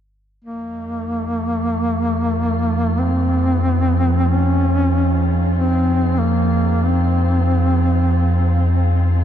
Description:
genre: dark ambient drone.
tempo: 47 BPM.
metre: 4/4.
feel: straight.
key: F minor.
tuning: A4 = 438 Hz.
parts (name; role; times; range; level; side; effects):
mellow duduk; melody; 0.4-9.2 s; Bb3 to Db4; -20 LUFS; equal; tape echo.
icy glass pad; texture; 0.9-9.2 s; F5; -37 LUFS; right 1 dB; none.
warm symphonic cello section; sustained chords; 0.5-9.2 s; Eb4 to C5; -33 LUFS; left 2 dB; none.
deep rumbling drone; drone; 0.8-9.2 s; F2 to F3; -17 LUFS; equal; built-in reverb.
room: wet huge ambient reverb, RT60 8.4 s.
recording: dark, warm production, nothing above 7.9 kHz, faint mains hum.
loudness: -15 LUFS.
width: side -10 dB against mid.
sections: 0.5-9.2 A section.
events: none.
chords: 0.5 Fm.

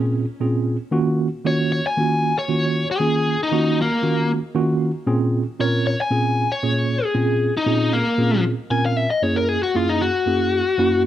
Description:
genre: blues.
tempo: 116 BPM.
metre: 4/4.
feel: straight.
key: Bb minor.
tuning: A4 = 440 Hz.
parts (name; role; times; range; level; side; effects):
tine electric piano; accompaniment; 0.0-11.1 s; Gb2 to Bb4; -20 LUFS; right 2 dB; medium stereo tremolo.
biting overdriven guitar; melody; 1.5-11.0 s; Bb3 to Ab5; -21 LUFS; left 3 dB; slapback echo.
room: light reverb, digital ambience.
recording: dry, close 1970s-style studio recording.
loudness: -18 LUFS.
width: side -12 dB against mid.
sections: 0.0-11.1 A section.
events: overdriven electric guitar solo 0.0-11.1.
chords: 0.0 Bbm7; 0.9 Ebm7; 5.1 Bbm7; 9.2 Gb7.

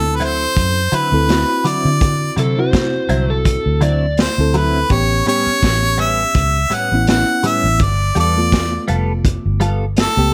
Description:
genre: straight-eighth soul blues.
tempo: 83 BPM.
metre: 4/4.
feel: swing 56% on 16ths.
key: D mixolydian.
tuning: A4 = 440 Hz.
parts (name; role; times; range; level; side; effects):
bright harmonica; melody; 0.0-10.3 s; A4 to F#5; -20 LUFS; equal; none.
reed electric piano; accompaniment; 0.0-10.3 s; A3 to A4; -24 LUFS; equal; none.
vintage muted fingered electric bass; bass; 0.0-10.3 s; F1 to D3; -20 LUFS; equal; none.
direct-recorded clean electric guitar; stabs; 0.2-9.8 s; A2 to A4; -24 LUFS; equal; phaser.
crunchy breakbeat drum kit; drums; 0.2-10.2 s; hi-hat, kick drum, snare drum; -20 LUFS; equal; none.
overdriven slide guitar; second line; 2.4-4.2 s; A4 to D5; -24 LUFS; equal; none.
room: light reverb.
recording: none.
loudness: -16 LUFS.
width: mono.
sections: 0.0-10.3 A section.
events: none.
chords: 0.0 D9; 4.9 A9; 7.8 G9.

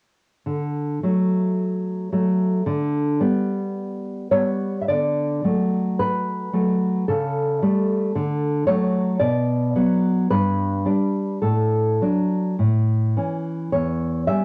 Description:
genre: romantic piece for solo classical guitar.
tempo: 51-57 BPM.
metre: 2/4.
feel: rubato.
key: D major.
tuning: A4 = 440 Hz.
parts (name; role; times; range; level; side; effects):
nylon-string guitar; solo; 0.5-14.4 s; E2 to E5; -22 LUFS; equal; cassette tape.
room: moderate studio reverb, RT60 0.6 s.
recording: home recording on cassette.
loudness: -22 LUFS.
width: mono.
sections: 0.5-4.9 A section; 4.9-14.4 B section.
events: none.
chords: 0.5 D; 2.7 G/D; 4.9 D; 7.1 A7/C#; 8.1 D; 9.2 Bm; 10.3 G; 11.4 D/A; 12.6 A; 13.7 C#dim/E.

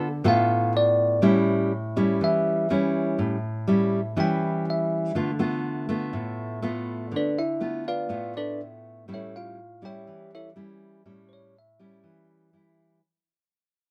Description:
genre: bossa nova.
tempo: 122 BPM.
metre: 4/4.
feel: straight.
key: unclear.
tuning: A4 = 440 Hz.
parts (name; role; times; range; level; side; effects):
nylon-string guitar; accompaniment; 0.0-13.0 s; A2 to A4; -27 LUFS; equal; none.
bell-like tine electric piano; melody; 0.3-12.3 s; D4 to G5; -28 LUFS; equal; none.
room: light reverb.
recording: none.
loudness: -25 LUFS.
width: mono.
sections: 0.0-13.0 A section.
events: fade-out 0.0-13.0; tine electric piano solo 0.0-13.0.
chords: 0.0 Dm6; 1.2 A7; 5.2 Dm6; 9.1 A7.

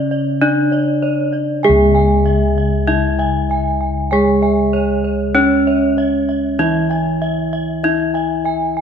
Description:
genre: Javanese gamelan.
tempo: 48 BPM.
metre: 4/4.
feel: straight.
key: unclear.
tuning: A4 = 440 Hz.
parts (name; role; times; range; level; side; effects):
gamelan-type bronze metallophone; melody; 0.0-8.8 s; C#4 to G#4-30c; -17 LUFS; left 1 dB; none.
gamelan-type bronze metallophone; accompaniment; 0.0-8.8 s; C#3 to G#3-30c; -21 LUFS; right 5 dB; none.
gamelan-type bossed gongs; arpeggios; 0.0-8.8 s; C#5 to G#5-30c; -23 LUFS; left 6 dB; none.
gamelan-type bronze metallophone; arpeggios; 0.0-8.8 s; C#5 to G#5-30c; -24 LUFS; right 6 dB; none.
gamelan-type bossed gongs; bass; 0.0-8.8 s; C#2 to G#4-30c; -21 LUFS; left 1 dB; none.
room: wet recital hall reverb, RT60 1.7 s.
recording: none.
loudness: -13 LUFS.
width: side -7 dB against mid.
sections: 0.0-1.6 A section; 1.6-8.8 B section.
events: none.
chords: none.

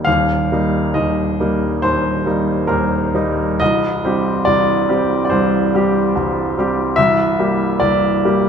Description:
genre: classical, romantic character piece for solo piano.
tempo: 63-74 BPM.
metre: 4/4.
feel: rubato.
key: unclear.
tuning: A4 = 440 Hz.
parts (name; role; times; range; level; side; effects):
clear grand piano; solo; 0.0-8.5 s; C1 to F5; -14 LUFS; equal; none.
room: moderate recital hall reverb, RT60 1.5 s.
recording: none.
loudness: -14 LUFS.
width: side -7 dB against mid.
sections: 0.1-8.5 A section.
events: none.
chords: 0.1 Eb; 3.6 Cm; 7.0 C7.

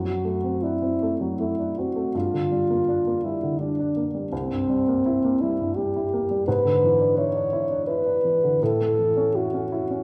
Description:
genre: classical, romantic duo for French horn and grand piano.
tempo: 84 BPM.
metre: 3/4.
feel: uneven beats, rubato.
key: A major from 6.5 s.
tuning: A4 = 442 Hz.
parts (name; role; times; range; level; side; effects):
dark French horn; melody; 0.0-10.0 s; C4 to C#5; -25 LUFS; equal; none.
warm baby grand piano; accompaniment; 0.0-10.0 s; C2 to E4; -29 LUFS; equal; none.
room: wet recital hall reverb, RT60 1.3 s.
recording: none.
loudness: -23 LUFS.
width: mono.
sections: 0.0-10.0 A section.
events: none.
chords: 0.0 D7/F#; 2.1 Gm7; 4.3 C7; 6.5 E7/G#; 8.6 A.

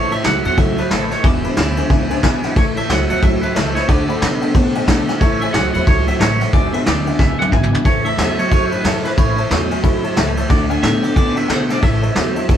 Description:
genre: rockabilly.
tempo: 181 BPM.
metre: 4/4.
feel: swing 61% on 8ths.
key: A major.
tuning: A4 = 441 Hz.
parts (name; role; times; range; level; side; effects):
twangy electric guitar; melody; 0.0-12.6 s; A4 to G#5; -23 LUFS; right 2 dB; tremolo.
honky-tonk upright piano; accompaniment; 0.0-12.6 s; B4 to B5; -27 LUFS; left 4 dB; none.
picked steel-string acoustic guitar; accompaniment; 0.0-12.6 s; E2 to F#4; -25 LUFS; left 4 dB; none.
electric guitar through a small old amp; riff; 0.0-12.6 s; E2 to B3; -22 LUFS; right 2 dB; none.
upright bass; bass; 0.0-12.6 s; E1 to B2; -22 LUFS; right 1 dB; none.
vintage brush drum kit; drums; 0.1-12.6 s; kick drum, ride cymbal, snare drum, toms; -16 LUFS; equal; none.
room: light reverb.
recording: band playing live in one room.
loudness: -14 LUFS.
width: side -9 dB against mid.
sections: 0.0-7.9 A section; 7.9-12.6 B section.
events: drum fill 7.2-7.9.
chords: 0.0 A; 1.2 E7; 2.6 A; 3.9 D; 5.2 A; 6.5 E7; 7.9 A; 10.5 D; 11.8 A.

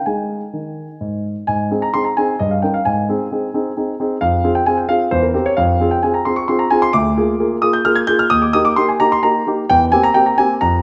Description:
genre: classical-period piano sonatina.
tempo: 131 BPM.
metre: 3/4.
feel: straight.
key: Ab major, Eb major from 6.9 s.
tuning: A4 = 439 Hz.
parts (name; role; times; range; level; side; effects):
warm concert grand piano; solo; 0.0-10.8 s; D2 to Ab6; -16 LUFS; equal; none.
room: wet recital hall reverb, RT60 1.5 s.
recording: none.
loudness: -16 LUFS.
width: mono.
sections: 0.0-1.5 A section; 1.5-10.8 A section.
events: none.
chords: 0.1 Ab5; 1.5 Ab; 2.4 Eb7/G; 2.9 Ab; 4.2 Fm; 5.1 C7/E; 5.6 Fm; 6.9 Bb7/D; 8.3 Eb; 9.7 C7/E.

